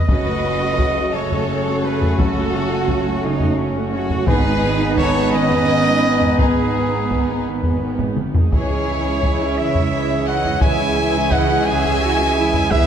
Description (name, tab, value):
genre	cinematic, epic orchestral film score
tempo	57 BPM (dotted quarters)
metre	6/8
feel	straight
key	F# dorian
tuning	A4 = 440 Hz
part	clear chamber violin section	melody	0.0-12.9 s	D#4 to E5	-27 LUFS	left 4 dB	none
part	rich symphonic violin section	second line	0.0-12.9 s	G#4 to G#5	-27 LUFS	left 3 dB	none
part	bright trumpet	stabs	0.0-12.9 s	G#4 to G#5	-23 LUFS	right 2 dB	none
part	rich symphonic viola section	accompaniment	0.1-12.9 s	D#3 to F#4	-27 LUFS	right 2 dB	none
part	mellow French horn section	sustained chords	0.1-12.9 s	A3 to B4	-27 LUFS	left 5 dB	none
part	warm trombone section	sustained chords	0.1-12.9 s	C#3 to B3	-26 LUFS	right 3 dB	none
part	warm woodwind section	sustained chords	0.1-12.9 s	G#3 to G#5	-28 LUFS	equal	none
part	clear symphonic double bass section	bass	0.1-12.9 s	F#1 to E2	-24 LUFS	right 4 dB	none
part	rich studio cello section	bass	0.1-12.9 s	B3 to A4	-25 LUFS	right 4 dB	none
part	taiko ensemble	drums	0.1-12.9 s	none	-20 LUFS	equal	none
room	moderate concert hall reverb, RT60 2.4 s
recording	none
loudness	-16 LUFS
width	side -8 dB against mid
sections	0.1-12.9 A section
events	drum fill 8.0-8.5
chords	0.1 F#m; 4.3 G#m; 8.5 C#m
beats	| 0.09 1.14 | 2.19 3.23 | 4.28 5.33 | 6.39 7.46 | 8.54 9.59 | 10.63 11.67 | 12.72